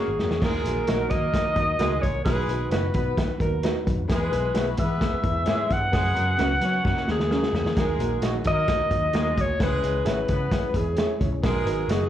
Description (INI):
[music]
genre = uptempo 1960s-style soul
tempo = 131 BPM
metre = 4/4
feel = straight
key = unclear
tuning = A4 = 440 Hz
[part]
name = warm alto saxophone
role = melody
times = 0.0-12.1 s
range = G#4 to F#5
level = -26 LUFS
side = left 1 dB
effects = slapback echo
[part]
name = clear horn section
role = second line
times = 0.0-12.1 s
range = F#3 to C#5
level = -34 LUFS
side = right 1 dB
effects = slapback echo
[part]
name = clear upright piano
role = accompaniment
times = 0.0-12.0 s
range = F#3 to C#5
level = -32 LUFS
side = left 4 dB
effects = slapback echo
[part]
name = mellow electric guitar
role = stabs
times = 0.0-12.0 s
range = C#4 to E5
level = -32 LUFS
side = right 6 dB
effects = slapback echo
[part]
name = vintage muted picked electric bass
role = bass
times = 0.1-12.1 s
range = F#1 to F#3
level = -28 LUFS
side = equal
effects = none
[part]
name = vintage drum kit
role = drums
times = 0.2-12.0 s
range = crash cymbal, hi-hat, kick drum, snare drum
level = -27 LUFS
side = equal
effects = none
[part]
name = tonewheel organ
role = sustained chords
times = 0.4-12.1 s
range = C#3 to G#4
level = -37 LUFS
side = right 2 dB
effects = none
[sound]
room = light reverb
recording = live gig heard through the venue's PA, club reverb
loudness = -21 LUFS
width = side -11 dB against mid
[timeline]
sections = 0.4-12.1 A section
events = drum fill 0.0-0.4, 6.8-7.8; band accent 0.0-0.4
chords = 0.4 D#m; 2.3 B; 4.1 E; 5.9 F#sus4; 6.8 F#; 7.8 D#m; 9.6 C#m; 11.4 B